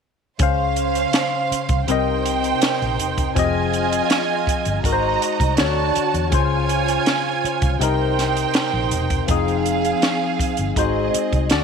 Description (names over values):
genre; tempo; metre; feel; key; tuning
lush 1970s-style soul; 81 BPM; 4/4; straight; F minor; A4 = 441 Hz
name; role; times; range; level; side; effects
warm studio string section; second line; 0.4-11.6 s; A3 to Bb5; -22 LUFS; right 9 dB; none
barky tine electric piano; accompaniment; 0.4-11.6 s; C3 to F5; -23 LUFS; left 13 dB; overdrive, phaser
vintage muted fingered electric bass; bass; 0.4-11.6 s; E1 to E2; -24 LUFS; equal; none
compact cocktail drum kit; drums; 0.4-11.6 s; hi-hat, kick drum, snare drum; -22 LUFS; right 1 dB; none
room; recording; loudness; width
moderate plate reverb, RT60 2.3 s; 1960s-style stereo with parts hard left and right; -17 LUFS; side -6 dB against mid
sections
0.4-11.6 A section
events
none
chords
0.4 Dbmaj7; 1.9 Cm7; 3.4 Fm7; 4.8 Ab7; 5.6 Dmaj7; 6.3 Dbmaj7; 7.8 Cm7; 9.3 Fm7; 10.8 Ab7